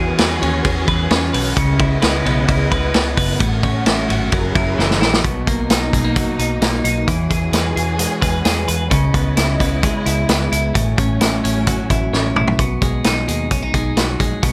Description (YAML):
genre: jangly indie pop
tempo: 131 BPM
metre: 4/4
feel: straight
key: B major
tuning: A4 = 439 Hz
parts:
  - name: warm symphonic string section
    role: sustained chords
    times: 0.0-12.6 s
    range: B2 to D#5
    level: -28 LUFS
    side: equal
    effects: none
  - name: twelve-string electric guitar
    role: arpeggios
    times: 0.0-14.5 s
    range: F#2 to B4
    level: -22 LUFS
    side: equal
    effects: none
  - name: vintage muted fingered electric bass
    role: bass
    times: 0.0-14.5 s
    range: F#1 to E2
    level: -24 LUFS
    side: equal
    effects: none
  - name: vintage drum kit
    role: drums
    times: 0.2-14.5 s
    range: hi-hat, kick drum, ride cymbal, snare drum, toms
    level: -21 LUFS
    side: equal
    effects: none
room: light reverb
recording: none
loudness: -17 LUFS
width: mono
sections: 0.0-5.2 A section; 5.2-12.6 B section; 12.6-14.5 C section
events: drum fill 4.8-5.2, 12.1-12.6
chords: 0.0 E6; 1.6 C#m7; 3.4 A6; 4.3 F#7; 5.2 Bmaj7; 7.1 E6; 8.9 C#m7; 10.8 A6; 12.6 G#m7